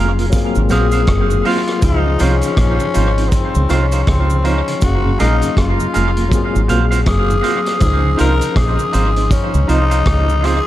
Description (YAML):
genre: lovers rock reggae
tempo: 80 BPM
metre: 4/4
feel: swing 61% on 16ths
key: Db major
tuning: A4 = 440 Hz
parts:
  - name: mellow tonewheel organ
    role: accompaniment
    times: 0.0-10.6 s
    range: Gb2 to F4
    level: -24 LUFS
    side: right 3 dB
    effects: chorus vibrato, slow rotary speaker, tape echo
  - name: overdriven tine electric piano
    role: accompaniment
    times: 0.0-10.7 s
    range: F3 to F5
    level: -22 LUFS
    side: left 4 dB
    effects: fast tremolo, tape echo
  - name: twangy electric guitar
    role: stabs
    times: 0.0-10.6 s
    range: Eb4 to F5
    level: -22 LUFS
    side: right 5 dB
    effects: spring reverb, tape echo
  - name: deep dub fingered electric bass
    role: bass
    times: 0.0-10.6 s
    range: F1 to Db2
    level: -16 LUFS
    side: equal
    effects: none
  - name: vintage drum kit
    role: drums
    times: 0.2-10.6 s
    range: hi-hat, kick drum, rim click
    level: -20 LUFS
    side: equal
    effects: tape echo
  - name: cabasa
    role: percussion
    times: 0.3-10.4 s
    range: none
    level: -33 LUFS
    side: right 6 dB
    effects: none
  - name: growling tenor saxophone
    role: melody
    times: 0.7-10.7 s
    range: Cb4 to Bb4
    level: -20 LUFS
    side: left 4 dB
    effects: tape echo
room: small room ambience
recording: dark, warm production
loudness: -12 LUFS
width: side -14 dB against mid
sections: 0.0-10.7 A section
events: none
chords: 0.3 Ab13; 1.8 Dbmaj9; 4.8 Gbmaj9; 6.3 Ab13; 7.8 Dbmaj9